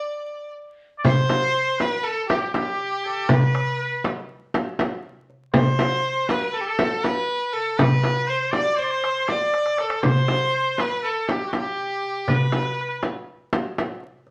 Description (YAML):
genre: Turkish makam ensemble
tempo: 240 BPM (eighths)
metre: 9/8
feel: straight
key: unclear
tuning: A4 = 444 Hz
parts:
  - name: clear violin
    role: melody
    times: 0.0-13.0 s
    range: G4 to D5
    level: -27 LUFS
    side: equal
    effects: none
  - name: trumpet with straight mute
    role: second line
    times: 1.0-13.0 s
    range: F#4 to D5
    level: -30 LUFS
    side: equal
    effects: none
  - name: darbuka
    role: percussion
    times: 1.0-14.3 s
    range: none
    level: -27 LUFS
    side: equal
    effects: none
  - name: frame drum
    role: percussion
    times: 1.0-13.9 s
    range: none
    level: -26 LUFS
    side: equal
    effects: none
room: wet studio reverb, RT60 0.7 s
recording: vinyl crackle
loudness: -23 LUFS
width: mono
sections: 0.0-1.1 A section; 1.1-14.3 B section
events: stop 0.0-1.1; drum fill 9.5-10.0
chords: none